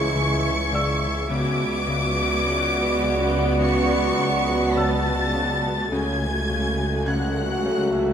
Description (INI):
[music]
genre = cinematic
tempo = 52 BPM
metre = 4/4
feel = straight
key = unclear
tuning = A4 = 441 Hz
[part]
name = warm studio violin section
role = melody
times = 0.0-8.1 s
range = F#6 to D7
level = -29 LUFS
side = left 2 dB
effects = none
[part]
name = warm studio violin section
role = second line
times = 0.0-8.1 s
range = F#5 to D6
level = -29 LUFS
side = left 1 dB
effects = none
[part]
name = dark studio viola section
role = accompaniment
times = 0.0-8.1 s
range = C#3 to F#4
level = -26 LUFS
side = right 2 dB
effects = none
[part]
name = bright trombone section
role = sustained chords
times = 0.0-8.1 s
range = E3 to B3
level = -30 LUFS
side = right 4 dB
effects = none
[part]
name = mellow French horn section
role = sustained chords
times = 0.0-8.1 s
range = C#3 to D5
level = -29 LUFS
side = left 2 dB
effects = none
[part]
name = rich studio double bass section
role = bass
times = 0.0-8.1 s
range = C#2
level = -29 LUFS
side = right 1 dB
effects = none
[part]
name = warm chamber cello section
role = bass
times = 0.0-8.1 s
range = C#2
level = -31 LUFS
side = right 1 dB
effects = none
[part]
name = deep rumbling drone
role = drone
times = 0.0-8.1 s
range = C#2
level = -33 LUFS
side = equal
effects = none
[part]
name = felt-muted upright piano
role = texture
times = 0.0-8.1 s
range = D5 to G#6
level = -33 LUFS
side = left 1 dB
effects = none
[part]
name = warm studio violin section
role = texture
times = 0.0-5.3 s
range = E5 to G#6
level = -36 LUFS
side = left 7 dB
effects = none
[part]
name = fat analog bass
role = riff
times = 0.2-8.0 s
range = C#3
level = -30 LUFS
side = left 2 dB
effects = none
[sound]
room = light reverb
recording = close, detailed microphones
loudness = -20 LUFS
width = side -8 dB against mid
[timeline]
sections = 0.0-8.1 A section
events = none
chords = 0.0 C#m; 1.3 Bm/C#; 5.9 F#madd9/C#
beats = 0.15 | 1.31 2.46 3.62 4.77 | 5.92 7.08